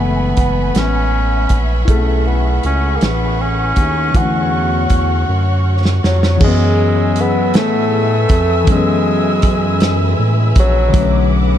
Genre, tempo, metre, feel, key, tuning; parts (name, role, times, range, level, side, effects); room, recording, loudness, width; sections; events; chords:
slow six-eight R&B; 53 BPM (dotted quarters); 6/8; straight; F# minor; A4 = 440 Hz
mellow bassoon; melody; 0.0-11.3 s; F#3 to F#4; -18 LUFS; equal; ping-pong delay
reed electric piano; accompaniment; 0.0-11.6 s; D3 to G#4; -20 LUFS; left 5 dB
warm studio string section; sustained chords; 0.0-11.6 s; F#4 to E6; -24 LUFS; equal
smooth synth bass; bass; 0.0-11.6 s; F#1 to A2; -16 LUFS; equal
warm soul drum kit; drums; 0.4-11.1 s; crash cymbal, hi-hat, kick drum, snare drum; -16 LUFS; right 1 dB
moderate huge ambient reverb, RT60 8.2 s; dreamy mix soaked in reverb; -12 LUFS; side -10 dB against mid
0.0-6.4 A section; 6.4-11.6 B section
drum fill 5.3-6.4
0.0 F#m11; 1.9 B13sus4; 4.1 E13sus4; 6.4 F#m11; 10.9 Bm7